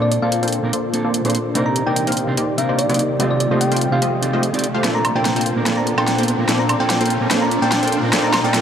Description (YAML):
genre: future bass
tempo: 146 BPM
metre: 4/4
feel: half-time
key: Bb major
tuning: A4 = 440 Hz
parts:
  - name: thumb-piano-like synth pluck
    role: melody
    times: 0.0-8.5 s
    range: D5 to Bb5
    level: -23 LUFS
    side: left 1 dB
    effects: chorus
  - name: mellow electric guitar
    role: accompaniment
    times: 0.0-8.6 s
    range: Bb2 to D5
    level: -22 LUFS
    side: right 2 dB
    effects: none
  - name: ethereal airy pad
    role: sustained chords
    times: 0.0-8.6 s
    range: Bb2 to D5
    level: -27 LUFS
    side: equal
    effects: ensemble chorus, built-in reverb
  - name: supersaw stab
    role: riff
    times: 0.0-8.6 s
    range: A3 to G5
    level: -21 LUFS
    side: left 1 dB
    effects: low-pass filter
  - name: riser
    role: sound effects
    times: 0.6-8.6 s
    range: none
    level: -27 LUFS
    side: right 1 dB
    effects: none
  - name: big-room dance drum kit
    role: drums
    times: 0.1-8.6 s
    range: hi-hat, snare drum, woodblock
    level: -22 LUFS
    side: equal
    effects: overdrive, high-pass filter on snare, high-pass filter on hats, high-pass filter on perc
room: moderate huge ambient reverb, RT60 4.8 s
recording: none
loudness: -16 LUFS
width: side -8 dB against mid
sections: 0.0-8.6 A section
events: build-up 0.0-8.6; filter sweep on supersaw synth 0.0-8.6; riser 0.6-8.6; drum fill 4.8-8.6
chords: 0.0 Bbmaj9; 1.6 Cm9; 3.2 F9; 4.8 Bbmaj9